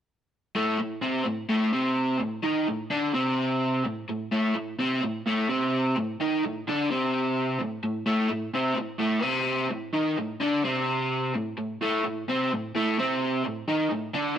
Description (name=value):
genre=rock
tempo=128 BPM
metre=4/4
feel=straight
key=unclear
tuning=A4 = 439 Hz
part: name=crunchy overdriven guitar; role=riff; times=0.6-14.4 s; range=A2 to D#4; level=-24 LUFS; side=equal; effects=none
room=moderate stone room reverb, RT60 1.1 s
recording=rough rehearsal-room recording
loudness=-24 LUFS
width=side -9 dB against mid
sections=0.6-14.4 A section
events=none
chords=0.6 Gsus4 (rootless)